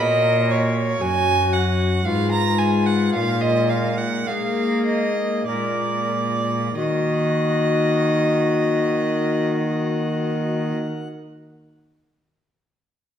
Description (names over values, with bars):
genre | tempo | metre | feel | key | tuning
classical, baroque-style sonata movement with continuo | 46-59 BPM | 3/4 | straight | Eb minor | A4 = 438 Hz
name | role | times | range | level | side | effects
tenor recorder | melody | 0.0-10.7 s | F4 to Bb4 | -26 LUFS | left 7 dB | none
rich violin | second line | 0.0-10.7 s | Db5 to Bb5 | -23 LUFS | right 2 dB | none
pipe organ, sparkling flutes | accompaniment | 0.0-11.1 s | Gb2 to Gb5 | -25 LUFS | left 2 dB | none
warm cello | bass | 0.0-10.7 s | Gb2 to Bb3 | -24 LUFS | right 1 dB | none
room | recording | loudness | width
wet recital hall reverb, RT60 1.5 s | none | -18 LUFS | side -9 dB against mid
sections
0.0-6.8 A section; 6.8-10.6 B section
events
slowing down 0.0-6.8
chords
0.0 Gb/Bb; 2.1 Fm7b5/Ab; 3.1 Bb7sus4; 5.5 Bb7; 6.8 Ebm